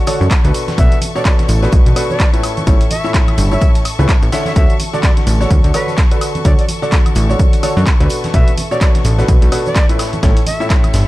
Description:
piano house; 127 BPM; 4/4; swing 58% on 16ths; D major; A4 = 441 Hz
rich symphonic string section; sustained chords; 0.0-11.1 s; A4 to C#6; -27 LUFS; left 4 dB; sidechain pumping
clear grand piano; riff; 0.0-11.0 s; A2 to E5; -19 LUFS; equal; sidechain pumping, dub echo
breakbeat sampler-style drum kit; drums; 0.1-11.1 s; hi-hat, snare drum, tambourine; -30 LUFS; equal
punchy analog drum machine; drums; 0.1-11.1 s; handclaps, hi-hat, shaker, woodblock; -23 LUFS; equal
tambourine and congas; percussion; 0.1-11.0 s; -28 LUFS; right 1 dB
plucky analog bass; bass; 0.2-11.1 s; G1 to F#2; -13 LUFS; equal; sidechain pumping
electronic kick drum; drums; 0.3-10.8 s; -12 LUFS; equal
breathy bright jazz flute; melody; 0.8-10.7 s; B4 to E5; -25 LUFS; equal; dub echo
digital ambience; dark, warm production; -11 LUFS; side -17 dB against mid
0.0-11.1 A section
0.0 Dmaj7; 0.5 Bm7; 2.4 A; 4.6 Dmaj7; 8.1 Bm7; 10.0 A

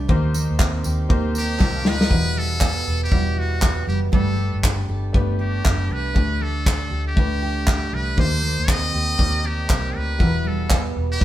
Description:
acoustic pop; 119 BPM; 4/4; swing 60% on 16ths; A4 = 435 Hz
bright upright piano; accompaniment; 0.0-11.2 s; G3 to Bb5; -31 LUFS; left 3 dB
picked steel-string acoustic guitar; accompaniment; 0.0-11.2 s; E2 to A4; -26 LUFS; right 2 dB
vintage muted fingered electric bass; bass; 0.0-11.2 s; E1 to Eb2; -24 LUFS; equal
natural country drum kit; drums; 0.1-11.2 s; handclaps, kick drum, snare drum, tambourine; -20 LUFS; equal
group handclap; percussion; 0.6-1.7, 10.7-10.8 s; -35 LUFS; right 4 dB
trumpet with metal mute; melody; 1.4-11.2 s; F#4 to Eb5; -26 LUFS; equal
moderate stone room reverb, RT60 1.0 s; band playing live in one room; -18 LUFS; side -13 dB against mid
0.0-2.1 A section; 2.1-11.2 B section
drum fill 1.6-2.1
0.1 Eb6; 2.1 Emadd9; 4.1 Gadd9; 6.2 Dsus4; 8.2 Eb6; 10.2 Emadd9

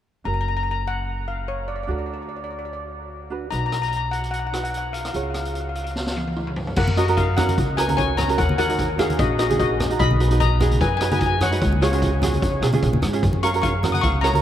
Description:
calypso; 148 BPM; 4/4; swing 53% on 16ths; F# major; A4 = 436 Hz
ukulele; accompaniment; 0.2-14.4 s; C#4 to C#5; -26 LUFS; right 5 dB
steel pan; melody; 0.3-14.4 s; E#4 to D#6; -25 LUFS; left 4 dB
upright bass; bass; 0.3-14.4 s; F#1 to B2; -24 LUFS; equal
street-band drum kit; drums; 3.5-14.4 s; crash cymbal, hi-hat, kick drum, rim click, snare drum, toms; -26 LUFS; equal
congas; percussion; 6.9-14.4 s; -28 LUFS; left 1 dB
moderate huge ambient reverb, RT60 8.4 s; in a vast, echoing space; -19 LUFS; side -11 dB against mid
0.3-6.8 A section; 6.8-14.4 B section
drum fill 6.0-6.8
0.3 F#; 1.9 D; 3.5 B; 5.1 C#; 6.8 F#; 8.4 D#m; 10.0 Bmaj7; 11.6 C#sus4; 12.4 C#; 13.2 F#maj7

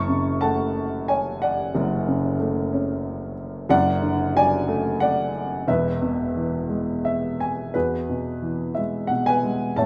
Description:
classical, lyrical solo piano; 90 BPM; 3/4; rubato; A4 = 440 Hz
dark baby grand piano; solo; 0.0-9.9 s; E1 to C#6; -24 LUFS; equal
moderate concert hall reverb, RT60 2.2 s; -24 LUFS; mono
0.0-7.7 A section; 7.7-9.9 B section
grand piano fill 6.7-7.7
0.0 F#m; 3.7 D/F#; 5.7 E; 7.7 Eadd9

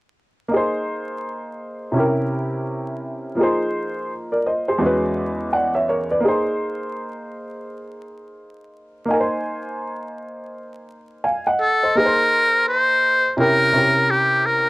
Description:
hip hop; 84 BPM; 4/4; swing 61% on 16ths; A4 = 440 Hz
warm upright piano; accompaniment; 0.5-14.7 s; E2 to Ab5; -21 LUFS; equal; cassette tape
trumpet with metal mute; melody; 11.6-14.7 s; G4 to C5; -16 LUFS; left 1 dB; cassette tape
moderate booth ambience, RT60 0.2 s; home recording on cassette, vinyl crackle; -18 LUFS; side -20 dB against mid
0.5-12.0 A section; 12.0-14.7 B section
0.5 Eb5; 2.0 C7b9; 3.4 Fm7; 4.8 Eadd9; 6.2 Eb5; 13.4 C7b9

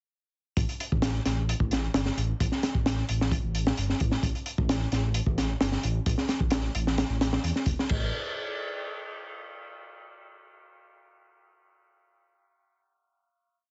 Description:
breakbeat, breaks; 131 BPM; 4/4; straight; A4 = 440 Hz
dark detuned saw bass; bass; 0.6-8.1 s; E1 to E2; -31 LUFS; equal
crunchy breakbeat drum kit; drums; 0.6-8.0 s; crash cymbal, hi-hat, kick drum, snare drum; -30 LUFS; equal
light reverb; heavily compressed radio sound, multiband compression, nothing above 7.9 kHz; -28 LUFS; mono
0.6-7.9 drop; 7.9-9.7 final note
drop 0.6-7.9

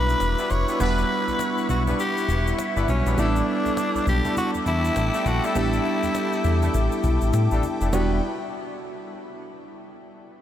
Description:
R&B, new jack swing; 101 BPM; 4/4; swing 60% on 16ths; E dorian; A4 = 440 Hz
raspy tenor saxophone; melody; 0.0-7.3 s; C#4 to C#5; -27 LUFS; left 1 dB; diffuse ambient delay
bell-like tine electric piano; accompaniment; 0.0-8.2 s; G3 to F#5; -28 LUFS; right 4 dB; lush chorus
phased analog pad; sustained chords; 0.0-8.2 s; E4 to D6; -30 LUFS; left 2 dB; phaser, chorus
smooth synth bass; bass; 0.0-8.2 s; E1 to A2; -23 LUFS; left 1 dB
cajon; drums; 0.1-8.1 s; -36 LUFS; left 1 dB
egg shaker; percussion; 0.1-8.2 s; -44 LUFS; left 8 dB
warm horn section; stabs; 0.4-8.2 s; A3 to B4; -33 LUFS; left 3 dB; diffuse ambient delay
moderate huge ambient reverb, RT60 7.7 s; dreamy mix soaked in reverb; -20 LUFS; side -11 dB against mid
0.0-7.9 A section; 7.9-10.3 B section
0.0 Em7; 3.2 A7sus4; 7.9 Em7

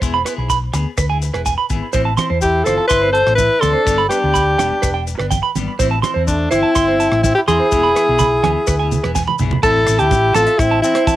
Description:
highlife guitar band; 125 BPM; 4/4; straight; A minor; A4 = 440 Hz
clean electric guitar; accompaniment; 0.0-11.1 s; E3 to G#4; -28 LUFS; left 8 dB; cassette tape
hollow-body short-scale fingered electric bass; bass; 0.0-10.8 s; E1 to E2; -20 LUFS; left 1 dB
tight funk drum kit; drums; 0.0-11.2 s; crash cymbal, hi-hat, kick drum, rim click, snare drum, toms; -22 LUFS; left 1 dB; cassette tape
maracas; percussion; 0.0-11.2 s; -30 LUFS; left 10 dB
clean electric guitar; arpeggios; 0.1-11.1 s; B4 to C6; -20 LUFS; right 7 dB; cassette tape, analog delay
congas; percussion; 1.9-11.2 s; -24 LUFS; right 6 dB
edgy alto saxophone; melody; 2.4-11.2 s; D4 to C5; -15 LUFS; left 2 dB; cassette tape
growling trumpet; second line; 2.4-11.2 s; A3 to A4; -24 LUFS; right 6 dB; cassette tape
light reverb; home recording on cassette; -13 LUFS; side -14 dB against mid
0.0-9.6 A section; 9.6-11.2 B section
drum fill 9.0-9.6
0.0 E; 1.9 Am; 3.9 G; 5.8 Am; 7.7 E; 9.6 Am

